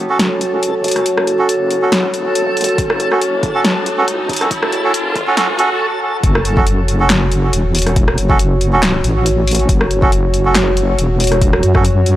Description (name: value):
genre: deep dubstep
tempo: 139 BPM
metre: 4/4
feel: swing 54% on 16ths, half-time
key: F# minor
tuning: A4 = 440 Hz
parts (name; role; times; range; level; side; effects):
- dark analog pad; sustained chords; 0.0-12.2 s; F#4 to C#5; -19 LUFS; equal; chorus
- deep soft wobble bass; bass; 0.0-12.2 s; E1 to F#2; -17 LUFS; equal; chorus, high-pass filter
- riser; sound effects; 1.6-5.8 s; none; -26 LUFS; left 1 dB; none
- backwards swelling texture; texture; 0.1-5.8 s; A4; -22 LUFS; right 2 dB; built-in reverb
- melodica; stabs; 0.1-11.8 s; C#4 to A4; -20 LUFS; right 2 dB; dub echo
- deep house drum kit; drums; 0.2-12.2 s; handclaps, hi-hat, rim click, snare drum; -18 LUFS; equal; overdrive
- electronic kick drum; drums; 2.8-11.8 s; none; -16 LUFS; equal; overdrive
room: light reverb, digital ambience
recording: dry, gritty hardware recording, transformer saturation, high-pass filter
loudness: -12 LUFS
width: side -14 dB against mid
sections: 0.0-6.2 A section; 6.2-12.2 B section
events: build-up 0.0-6.2; riser 1.6-5.8; stop 5.8-6.2; drop 6.2-12.2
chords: 0.0 F#m